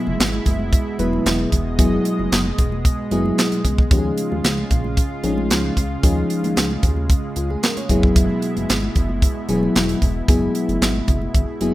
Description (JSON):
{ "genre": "early-eighties boogie funk", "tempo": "113 BPM", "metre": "4/4", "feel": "straight", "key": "unclear", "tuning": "A4 = 439 Hz", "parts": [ { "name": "mellow FM electric piano", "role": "accompaniment", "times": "0.0-11.7 s", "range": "F3 to Db5", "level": "-21 LUFS", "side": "left 1 dB", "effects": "chorus" }, { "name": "lush unison pad", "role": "sustained chords", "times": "0.0-11.7 s", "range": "Cb3 to Eb5", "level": "-26 LUFS", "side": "right 1 dB", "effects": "chorus" }, { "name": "chorused synth bass", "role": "bass", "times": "0.1-11.7 s", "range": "Fb1 to Eb2", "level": "-25 LUFS", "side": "equal", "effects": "none" }, { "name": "congas", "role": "percussion", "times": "0.1-11.7 s", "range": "none", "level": "-32 LUFS", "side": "equal", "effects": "none" }, { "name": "tight funk drum kit", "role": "drums", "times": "0.2-11.7 s", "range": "handclaps, hi-hat, kick drum, snare drum", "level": "-18 LUFS", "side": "equal", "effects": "none" } ], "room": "small room ambience", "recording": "rough home demo mix", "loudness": "-17 LUFS", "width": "side -16 dB against mid", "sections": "0.0-11.7 A section", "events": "none", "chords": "0.0 Gb9sus4; 3.9 Eb9sus4; 7.9 Gb9sus4" }